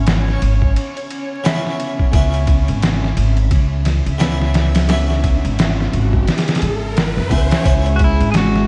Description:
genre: trip hop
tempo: 87 BPM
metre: 4/4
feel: swing 59% on 16ths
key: C# minor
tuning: A4 = 439 Hz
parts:
  - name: harpsichord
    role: accompaniment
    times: 0.0-8.7 s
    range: C#3 to F#5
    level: -27 LUFS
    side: equal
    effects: harmonic tremolo, vintage 12-bit sampler grit, tape echo
  - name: upright bass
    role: bass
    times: 0.0-8.7 s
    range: G#1 to F#2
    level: -19 LUFS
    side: equal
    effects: none
  - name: backwards swelling texture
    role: texture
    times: 0.0-7.7 s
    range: C#4 to E5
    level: -33 LUFS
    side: equal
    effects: built-in reverb
  - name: trip hop sampler-style drum kit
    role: drums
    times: 0.1-8.7 s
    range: kick drum, ride cymbal, snare drum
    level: -20 LUFS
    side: equal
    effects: studio reverb
  - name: riser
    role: sound effects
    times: 3.8-7.7 s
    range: none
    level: -31 LUFS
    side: equal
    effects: none
  - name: dark analog pad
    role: sustained chords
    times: 7.6-8.7 s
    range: G#3 to G#4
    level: -22 LUFS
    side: equal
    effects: chorus
  - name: clean electric guitar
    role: melody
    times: 8.0-8.7 s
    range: E4 to G#4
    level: -23 LUFS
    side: equal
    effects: none
room: light reverb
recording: dark, warm production, vinyl crackle, nothing above 11.0 kHz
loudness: -16 LUFS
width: mono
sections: 0.0-7.7 A section; 7.7-8.7 B section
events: riser 3.8-7.7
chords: 0.0 C#m7

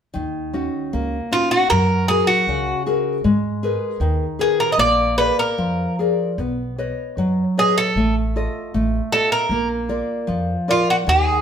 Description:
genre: fado-style ballad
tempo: 76 BPM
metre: 2/4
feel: rubato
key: Eb minor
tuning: A4 = 440 Hz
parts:
  - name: nylon-string guitar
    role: accompaniment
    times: 0.1-11.4 s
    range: Db3 to D#5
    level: -21 LUFS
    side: left 1 dB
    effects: none
  - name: upright bass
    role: bass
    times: 0.2-11.4 s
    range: A1 to Ab2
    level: -24 LUFS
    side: equal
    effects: none
  - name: Irish bouzouki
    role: melody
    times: 1.3-11.4 s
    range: F4 to Eb5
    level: -18 LUFS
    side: right 1 dB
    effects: none
room: wet studio reverb, RT60 0.8 s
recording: band playing live in one room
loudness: -17 LUFS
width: side -8 dB against mid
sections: 0.1-11.4 A section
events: none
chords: 0.1 Ebm7; 1.7 Gbadd9; 3.2 Abmadd9; 4.8 Bb7; 6.4 Badd9; 8.0 F7/A; 9.5 Bb

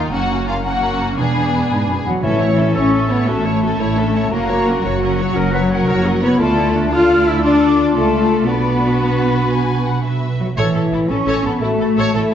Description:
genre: cinematic, heroic adventure film score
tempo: 115 BPM (dotted quarters)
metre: 12/8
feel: straight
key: A major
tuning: A4 = 440 Hz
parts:
  - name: warm clarinet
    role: second line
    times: 0.0-12.3 s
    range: Db4 to C#5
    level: -25 LUFS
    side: left 1 dB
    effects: none
  - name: warm symphonic violin section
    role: second line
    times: 0.0-12.2 s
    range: E4 to C#5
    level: -26 LUFS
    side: left 1 dB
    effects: none
  - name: rich studio viola section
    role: accompaniment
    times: 0.0-12.3 s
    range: Bb3 to A4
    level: -24 LUFS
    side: right 1 dB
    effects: none
  - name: mellow French horn section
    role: sustained chords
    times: 0.0-12.3 s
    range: E3 to F4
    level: -19 LUFS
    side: left 4 dB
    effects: none
  - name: warm symphonic cello section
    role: bass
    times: 0.0-12.3 s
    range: E2 to F4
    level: -22 LUFS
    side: right 2 dB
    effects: none
  - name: warm symphonic double bass section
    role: bass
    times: 0.0-12.3 s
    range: E1 to D2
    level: -21 LUFS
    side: right 3 dB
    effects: none
  - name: warm symphonic violin section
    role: melody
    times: 0.1-12.3 s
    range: E4 to G#5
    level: -27 LUFS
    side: left 3 dB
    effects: none
  - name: large flute ensemble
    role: second line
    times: 0.1-12.3 s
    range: E5 to F6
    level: -25 LUFS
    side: left 2 dB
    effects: none
  - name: timpani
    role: percussion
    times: 2.2-2.7 s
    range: A2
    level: -24 LUFS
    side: right 2 dB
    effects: none
room: wet concert hall reverb, RT60 1.8 s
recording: nothing above 7.9 kHz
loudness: -14 LUFS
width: side -9 dB against mid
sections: 0.0-2.2 A section; 2.2-12.3 B section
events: none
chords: 0.1 Gb; 1.2 E7; 2.2 A; 4.3 F#; 6.4 Dm; 8.5 Bm; 10.6 A

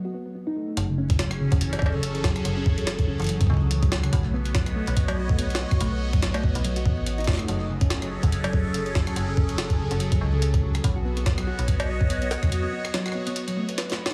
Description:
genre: IDM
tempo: 143 BPM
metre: 4/4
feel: swing 56% on 16ths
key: F# dorian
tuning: A4 = 439 Hz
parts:
  - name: harp-like synth pluck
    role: arpeggios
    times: 0.0-14.1 s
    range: C#3 to B4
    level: -32 LUFS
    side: equal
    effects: chorus, digital delay
  - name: phased analog pad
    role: sustained chords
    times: 0.8-14.1 s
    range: F#3 to D#5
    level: -35 LUFS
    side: equal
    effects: phaser, chorus, sidechain pumping
  - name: metallic FM bass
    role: bass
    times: 0.8-12.4 s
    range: F#1 to C#2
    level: -30 LUFS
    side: equal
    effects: none
  - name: jungle sampler-style drum kit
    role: drums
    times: 0.8-14.1 s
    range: cowbell, hi-hat, rim click, snare drum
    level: -34 LUFS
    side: equal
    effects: small room reverb, digital delay
  - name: electronic kick drum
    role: drums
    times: 1.1-12.5 s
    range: none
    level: -25 LUFS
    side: equal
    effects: small room reverb
room: digital ambience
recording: heavily compressed radio sound, small room reverb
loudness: -25 LUFS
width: mono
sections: 0.8-14.1 A section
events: break 0.0-0.8, 12.5-14.1; drum fill 13.8-14.1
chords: 0.0 B7; 0.8 F#m; 10.8 B7

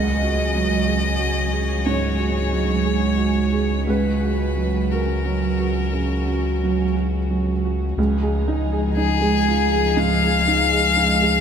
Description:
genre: neoclassical piano and strings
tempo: 60 BPM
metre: 4/4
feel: rubato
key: unclear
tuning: A4 = 440 Hz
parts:
  - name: clear violin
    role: melody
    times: 0.0-11.4 s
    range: G#4 to E#5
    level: -23 LUFS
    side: left 6 dB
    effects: none
  - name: felt-muted upright piano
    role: accompaniment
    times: 0.0-11.4 s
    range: C#2 to D#5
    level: -22 LUFS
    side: right 3 dB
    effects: none
  - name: dark chamber string section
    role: sustained chords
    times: 0.0-11.4 s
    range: E#3 to G#4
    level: -29 LUFS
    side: right 1 dB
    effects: none
  - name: saturated sub bass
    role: bass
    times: 0.0-11.4 s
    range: C#2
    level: -23 LUFS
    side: equal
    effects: none
room: wet cathedral reverb, RT60 5.6 s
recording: recorded in a church or concert hall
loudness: -18 LUFS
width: side -7 dB against mid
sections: 0.0-8.0 A section; 8.0-11.4 B section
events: none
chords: 0.0 C#sus4; 3.9 F#/C#; 8.0 C#add9

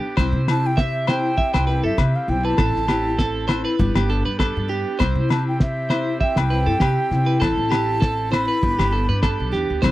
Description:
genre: highlife guitar band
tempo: 99 BPM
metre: 4/4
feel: swing 55% on 16ths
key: C major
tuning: A4 = 441 Hz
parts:
  - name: picked steel-string acoustic guitar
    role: accompaniment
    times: 0.0-9.9 s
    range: E3 to E4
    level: -26 LUFS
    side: left 4 dB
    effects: none
  - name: combo organ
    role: sustained chords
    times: 0.0-9.9 s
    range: B3 to A4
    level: -32 LUFS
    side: equal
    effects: none
  - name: electric guitar at the edge of break-up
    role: arpeggios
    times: 0.0-9.9 s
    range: G4 to E5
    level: -26 LUFS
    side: right 5 dB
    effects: wide subtle chorus
  - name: upright bass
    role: bass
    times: 0.2-9.9 s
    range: G1 to C3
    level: -23 LUFS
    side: equal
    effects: none
  - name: cloth-damped thuddy drum kit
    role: drums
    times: 0.2-9.9 s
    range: kick drum, snare drum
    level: -21 LUFS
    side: equal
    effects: none
  - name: agogo bells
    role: percussion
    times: 0.2-9.9 s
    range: none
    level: -30 LUFS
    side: left 12 dB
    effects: none
  - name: wooden flute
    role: melody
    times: 0.5-9.5 s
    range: E5 to B5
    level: -24 LUFS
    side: equal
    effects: none
room: little or no reverb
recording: dry, close 1970s-style studio recording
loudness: -18 LUFS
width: side -16 dB against mid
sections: 0.0-9.8 A section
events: none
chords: 0.2 C; 2.6 Am; 3.8 G; 5.0 C; 7.4 Am; 8.6 G

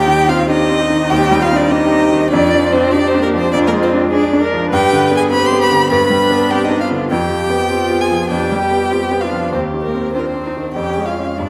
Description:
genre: quick classical-period movement for piano quartet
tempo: 100 BPM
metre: 4/4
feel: rubato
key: C minor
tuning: A4 = 438 Hz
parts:
  - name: warm violin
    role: melody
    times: 0.0-11.5 s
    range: Bb4 to C6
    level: -20 LUFS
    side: equal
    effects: none
  - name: warm cello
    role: second line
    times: 0.0-11.4 s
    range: Bb3 to C5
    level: -20 LUFS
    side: equal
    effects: none
  - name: clear concert grand piano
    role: accompaniment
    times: 0.0-11.5 s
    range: Eb2 to F4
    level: -19 LUFS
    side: equal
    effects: none
  - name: warm viola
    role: accompaniment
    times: 0.0-11.5 s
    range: Db4 to B4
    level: -23 LUFS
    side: equal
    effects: none
room: wet scoring stage reverb, RT60 1.9 s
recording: none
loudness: -15 LUFS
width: mono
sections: 0.0-11.5 A section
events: none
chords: 0.0 Cm/Eb; 2.3 Ddim/F; 4.7 G; 7.1 G7/F; 9.5 Cm/Eb; 10.8 Db/F

